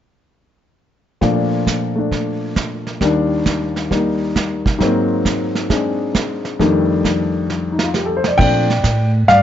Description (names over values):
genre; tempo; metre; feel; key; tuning
jazz piano trio; 134 BPM; 4/4; swing 67% on 8ths; Bb major; A4 = 440 Hz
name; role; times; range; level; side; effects
warm baby grand piano; melody; 1.2-9.4 s; Eb2 to G5; -16 LUFS; left 2 dB; none
vintage brush drum kit; drums; 1.2-9.4 s; brushed snare drum, crash cymbal, hi-hat, kick drum, snare drum; -20 LUFS; right 3 dB; none
upright bass; bass; 8.4-9.4 s; G2 to Bb2; -16 LUFS; right 1 dB; none
room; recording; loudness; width
light reverb; nothing above 7.6 kHz; -15 LUFS; side -10 dB against mid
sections
1.2-8.4 A section; 8.4-9.4 B section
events
drum fill 7.5-8.4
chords
1.2 Bbmaj7; 3.0 Ebmaj7; 4.8 Ab9; 6.6 F13; 8.4 Bbmaj9